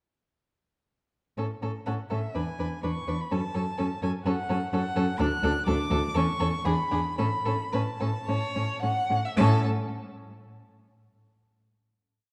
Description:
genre	quick classical-period movement for string quartet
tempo	109-128 BPM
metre	4/4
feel	rubato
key	A major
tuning	A4 = 440 Hz
part	rich violin	second line	1.4-9.7 s	G#4 to F#5	-35 LUFS	equal	none
part	rich viola	accompaniment	1.4-9.7 s	C#4 to D4	-36 LUFS	equal	none
part	rich cello	bass	1.4-9.7 s	D2 to A2	-30 LUFS	equal	none
part	warm violin	melody	1.9-9.7 s	E5 to F#6	-36 LUFS	equal	none
room	moderate concert hall reverb, RT60 2.2 s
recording	dark, warm production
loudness	-28 LUFS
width	mono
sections	1.4-9.4 A section; 9.4-11.4 final chord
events	slowing down 4.3-9.4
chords	1.4 A; 2.4 E7; 3.3 F#m; 5.2 D; 6.2 A (rootless); 6.7 E7(no3); 7.2 A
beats	| 1.38 1.86 2.35 2.84 | 3.32 3.79 4.26 4.74 | 5.21 5.68 6.16 6.66 | 7.19 7.73 8.28 8.83 | 9.37

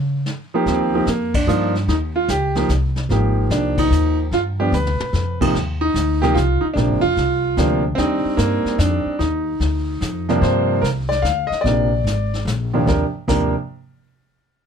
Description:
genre	jazz piano trio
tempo	147 BPM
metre	3/4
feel	swing 67% on 8ths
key	Eb major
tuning	A4 = 441 Hz
part	upright bass	bass	0.0-13.5 s	F1 to Db3	-21 LUFS	left 1 dB	none
part	vintage brush drum kit	drums	0.3-13.4 s	brushed snare drum, crash cymbal, hi-hat, kick drum, snare drum, toms	-27 LUFS	left 2 dB	none
part	clear concert grand piano	melody	0.5-13.5 s	Eb2 to F5	-19 LUFS	right 1 dB	none
room	little or no reverb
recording	none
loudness	-17 LUFS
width	side -7 dB against mid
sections	0.7-10.4 A section; 10.4-12.9 B section; 12.9-14.1 C section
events	band accent 1.3, 3.7; drum fill 4.7-5.1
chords	0.0 N.C.; 0.7 Ebmaj7; 1.9 Eb7; 3.1 Abmaj7; 4.3 G7; 5.5 Cm; 6.8 Bb7; 8.0 Ebmaj7; 10.4 Gm7; 11.6 Bb7; 12.9 Eb5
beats	0.25 | 0.66 1.06 1.47 | 1.88 2.29 2.69 | 3.10 3.51 3.91 | 4.32 4.73 5.13 | 5.54 5.95 6.36 | 6.76 7.17 7.58 | 7.98 8.39 8.80 | 9.20 9.61 10.02 | 10.42 10.83 11.24 | 11.65 12.05 12.46 | 12.87 13.28

